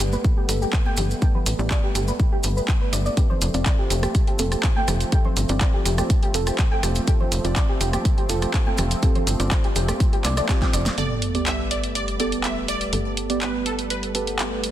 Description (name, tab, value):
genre	progressive house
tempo	123 BPM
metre	4/4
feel	straight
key	G mixolydian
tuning	A4 = 440 Hz
part	filtered supersaw swell	sustained chords	0.0-14.7 s	F3 to C4	-32 LUFS	right 1 dB	sidechain pumping, low-pass filter
part	soft round pluck	arpeggios	0.0-10.8 s	G4 to G5	-30 LUFS	equal	lush chorus, sidechain pumping, digital delay
part	deep mellow chord stab	stabs	0.0-14.7 s	B3 to D5	-30 LUFS	right 3 dB	analog chorus, sidechain pumping, digital delay
part	tight sequencer bass	bass	0.0-14.7 s	F1 to C2	-25 LUFS	equal	sidechain pumping
part	pop drum kit	drums	0.0-14.7 s	handclaps, hi-hat, rim click, snare drum	-28 LUFS	right 1 dB	none
part	maracas	percussion	0.0-11.0 s	none	-33 LUFS	right 2 dB	none
part	congas	percussion	0.1-11.0 s	none	-34 LUFS	right 1 dB	sidechain pumping on perc
part	electronic kick drum	drums	0.2-10.7 s	none	-20 LUFS	equal	none
part	wide unison pluck	melody	11.0-14.6 s	A4 to E5	-29 LUFS	right 1 dB	phaser, digital delay
part	sub drop	sound effects	11.0-12.9 s	none	-30 LUFS	equal	none
room	light reverb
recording	dense, heavily limited modern master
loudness	-19 LUFS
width	side -12 dB against mid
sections	0.0-11.0 A section; 11.0-14.7 B section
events	filter sweep on synth stab 0.0-11.0; filter sweep on supersaw synth 0.0-11.0; drum fill 10.5-11.0; impact 11.0-12.9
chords	0.0 Gadd9; 3.2 F; 11.0 Gadd9